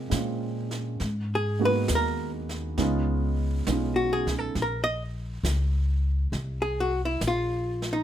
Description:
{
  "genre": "jazz ballad",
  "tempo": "68 BPM",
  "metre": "4/4",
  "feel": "swing 68% on 8ths",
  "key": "Bb minor",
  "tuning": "A4 = 441 Hz",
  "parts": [
    { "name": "dark baby grand piano", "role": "accompaniment", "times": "0.0-4.6 s", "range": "Ab3 to Gb4", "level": "-30 LUFS", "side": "right 5 dB", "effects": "none" },
    { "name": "upright bass", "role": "bass", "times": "0.0-8.0 s", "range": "Bb1 to Bb2", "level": "-28 LUFS", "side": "left 1 dB", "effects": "none" },
    { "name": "jazz brush drum kit", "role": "drums", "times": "0.1-8.0 s", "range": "brushed snare drum, hi-hat, kick drum, snare drum", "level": "-36 LUFS", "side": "right 3 dB", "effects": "none" },
    { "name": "archtop guitar, miked and amplified", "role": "melody", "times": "1.4-8.0 s", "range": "Eb4 to Eb5", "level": "-26 LUFS", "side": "left 1 dB", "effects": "none" }
  ],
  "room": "little or no reverb",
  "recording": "none",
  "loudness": "-25 LUFS",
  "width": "side -11 dB against mid",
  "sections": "0.0-8.0 A section",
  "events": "hollow-body jazz guitar solo 0.0-8.0",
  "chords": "0.0 Bbm9; 1.0 Abm9; 2.8 Db7; 4.6 Bbmadd9"
}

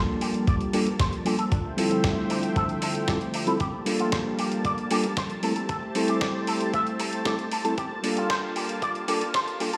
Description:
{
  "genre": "nu-disco, nu disco",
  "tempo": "115 BPM",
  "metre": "4/4",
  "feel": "straight",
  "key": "G dorian",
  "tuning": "A4 = 440 Hz",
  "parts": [
    { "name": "reed electric piano", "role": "accompaniment", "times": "0.0-9.7 s", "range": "G3 to A4", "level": "-30 LUFS", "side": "equal", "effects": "sidechain pumping, delay" },
    { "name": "lush unison pad", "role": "sustained chords", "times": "0.0-9.8 s", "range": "D3 to A5", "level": "-34 LUFS", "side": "equal", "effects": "chorus, sidechain pumping" },
    { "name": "electric guitar with an envelope filter", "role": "riff", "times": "0.2-9.8 s", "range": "C4 to E5", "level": "-33 LUFS", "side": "equal", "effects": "analog chorus, low-pass filter, delay" },
    { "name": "dusty soul sampler-style drum kit", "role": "drums", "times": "0.2-9.8 s", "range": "hi-hat, snare drum", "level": "-35 LUFS", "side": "equal", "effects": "high-pass filter on hats, high-pass filter on snare" },
    { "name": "electronic kick drum", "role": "drums", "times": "0.5-9.4 s", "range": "none", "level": "-30 LUFS", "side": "equal", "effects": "none" }
  ],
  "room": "moderate plate reverb, RT60 1.9 s",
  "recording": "played on a big sound system in a bare room, large studio reverb, high-pass filter",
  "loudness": "-26 LUFS",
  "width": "mono",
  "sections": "0.0-9.8 A section",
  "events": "build-up 0.0-9.8; filter sweep 0.0-9.8",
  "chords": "0.0 Gm9; 1.5 Dm11; 3.6 Gm9; 5.4 Am7; 7.8 Gm9"
}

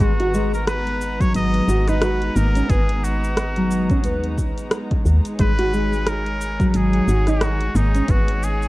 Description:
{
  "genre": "organic downtempo",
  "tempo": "89 BPM",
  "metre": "4/4",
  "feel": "swing 58% on 16ths",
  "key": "G# minor",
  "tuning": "A4 = 441 Hz",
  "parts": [
    { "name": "trumpet with straight mute", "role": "melody", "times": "0.0-8.7 s", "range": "D#4 to D#5", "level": "-27 LUFS", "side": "equal", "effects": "tape echo" },
    { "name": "rich chamber string section", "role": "sustained chords", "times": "0.0-8.7 s", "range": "G#3 to A#5", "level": "-29 LUFS", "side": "equal", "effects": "sidechain pumping" },
    { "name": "nylon-string guitar", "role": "arpeggios", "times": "0.0-8.3 s", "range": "D#3 to F#4", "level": "-23 LUFS", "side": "equal", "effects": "tape echo" },
    { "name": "woody FM bass", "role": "bass", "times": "0.0-8.7 s", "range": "G#1 to D#2", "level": "-21 LUFS", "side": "equal", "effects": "transformer saturation, sidechain pumping" },
    { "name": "deep house drum kit", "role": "drums", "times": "0.0-8.7 s", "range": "hi-hat, rim click, shaker", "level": "-26 LUFS", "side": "equal", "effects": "small room ambience" },
    { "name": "electronic kick drum", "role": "drums", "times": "0.0-8.2 s", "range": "none", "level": "-21 LUFS", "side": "equal", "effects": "small room ambience" }
  ],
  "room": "studio ambience",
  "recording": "worn, warbling old tape, cassette tape, warbly pitch drift",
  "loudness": "-17 LUFS",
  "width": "side -18 dB against mid",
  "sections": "0.0-8.7 A section",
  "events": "none",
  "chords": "0.0 G#m7"
}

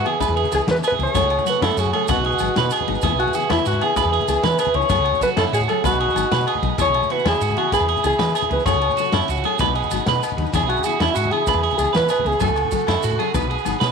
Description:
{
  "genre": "highlife guitar band",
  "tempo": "128 BPM (dotted quarters)",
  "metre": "12/8",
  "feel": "straight",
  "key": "E major",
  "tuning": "A4 = 440 Hz",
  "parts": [
    { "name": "breathy alto saxophone", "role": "melody", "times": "0.0-13.3 s", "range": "E4 to C#5", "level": "-21 LUFS", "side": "equal", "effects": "none" },
    { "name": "nylon-string guitar", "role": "accompaniment", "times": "0.0-13.8 s", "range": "E3 to A4", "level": "-29 LUFS", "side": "left 15 dB", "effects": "none" },
    { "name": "mellow tonewheel organ", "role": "sustained chords", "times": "0.0-13.9 s", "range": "A3 to D#6", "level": "-30 LUFS", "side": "equal", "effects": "slow rotary speaker" },
    { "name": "electric guitar at the edge of break-up", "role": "arpeggios", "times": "0.0-13.9 s", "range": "E4 to G#5", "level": "-23 LUFS", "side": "right 15 dB", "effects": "spring reverb, tape echo" },
    { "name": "woody fretless electric bass", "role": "bass", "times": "0.0-13.9 s", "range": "G#1 to E3", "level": "-24 LUFS", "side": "equal", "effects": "analog chorus" },
    { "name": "vintage drum kit", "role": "drums", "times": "0.1-13.9 s", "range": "kick drum, ride cymbal, snare drum", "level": "-29 LUFS", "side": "equal", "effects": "none" },
    { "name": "agogo bells", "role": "percussion", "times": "0.1-13.8 s", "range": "none", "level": "-30 LUFS", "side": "left 16 dB", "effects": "none" },
    { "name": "congas", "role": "percussion", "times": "0.2-13.9 s", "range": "none", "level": "-29 LUFS", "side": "left 10 dB", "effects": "none" },
    { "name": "maracas", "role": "percussion", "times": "0.2-13.7 s", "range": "none", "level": "-37 LUFS", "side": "right 15 dB", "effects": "none" }
  ],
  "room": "light reverb",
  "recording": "1960s-style stereo with parts hard left and right",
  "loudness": "-17 LUFS",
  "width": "side -5 dB against mid",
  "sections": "0.0-13.9 A section",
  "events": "drum fill 13.5-13.9",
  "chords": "0.0 E; 1.2 F#m; 2.1 B; 3.0 E; 4.9 F#m; 5.9 B; 6.8 E; 8.7 F#m; 9.6 B; 10.5 E; 12.4 F#m; 13.3 B"
}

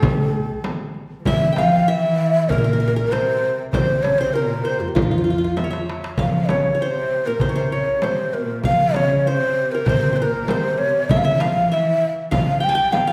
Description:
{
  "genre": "Turkish makam ensemble",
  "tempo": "98 BPM",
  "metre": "4/4",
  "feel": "straight",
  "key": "C makam hicaz",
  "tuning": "A4 = 439 Hz",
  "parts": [
    { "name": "breathy mellow ney", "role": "melody", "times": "0.0-13.1 s", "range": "F4 to G5", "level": "-23 LUFS", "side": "equal", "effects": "none" },
    { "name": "dark chamber cello section", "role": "second line", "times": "0.0-13.1 s", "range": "F2 to G3", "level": "-27 LUFS", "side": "equal", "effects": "none" },
    { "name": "qanun", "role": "second line", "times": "0.0-13.1 s", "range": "F4 to A5-40c", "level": "-29 LUFS", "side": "equal", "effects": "none" },
    { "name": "darbuka", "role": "percussion", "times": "0.0-13.1 s", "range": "none", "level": "-26 LUFS", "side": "equal", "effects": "none" },
    { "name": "frame drum", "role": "percussion", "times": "0.0-13.1 s", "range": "none", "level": "-28 LUFS", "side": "equal", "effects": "none" }
  ],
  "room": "wet recital hall reverb, RT60 1.5 s",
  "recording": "recorded in a church or concert hall",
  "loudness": "-19 LUFS",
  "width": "mono",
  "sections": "0.0-13.1 A section",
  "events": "drum fill 5.6-6.2",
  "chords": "none"
}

